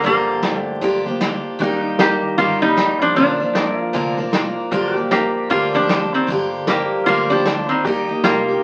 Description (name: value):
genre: honky-tonk and classic country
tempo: 154 BPM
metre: 4/4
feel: swing 62% on 8ths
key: G minor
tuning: A4 = 440 Hz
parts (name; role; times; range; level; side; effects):
- lap resonator guitar; melody; 0.0-8.6 s; D3 to G4; -19 LUFS; equal; none
- picked steel-string acoustic guitar; accompaniment; 0.0-8.6 s; G2 to Bb4; -24 LUFS; equal; none
- pedal steel guitar; sustained chords; 0.0-8.6 s; Eb4 to Eb5; -29 LUFS; equal; none
- upright bass; bass; 0.0-8.6 s; F1 to Eb2; -38 LUFS; equal; none
- soft brush drum kit; drums; 0.0-8.3 s; hi-hat, kick drum, snare drum; -24 LUFS; equal; none
room: wet studio reverb, RT60 0.6 s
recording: very old 78 rpm record, vinyl crackle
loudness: -18 LUFS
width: mono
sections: 0.0-8.6 A section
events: none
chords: 0.0 Gm7; 1.6 Eb; 3.2 Bb; 4.7 Gm7; 7.8 Eb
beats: | 0.04 0.43 0.82 1.21 | 1.60 1.99 2.38 2.77 | 3.17 3.56 3.94 4.34 | 4.73 5.12 5.51 5.90 | 6.29 6.68 7.07 7.46 | 7.85 8.24 8.63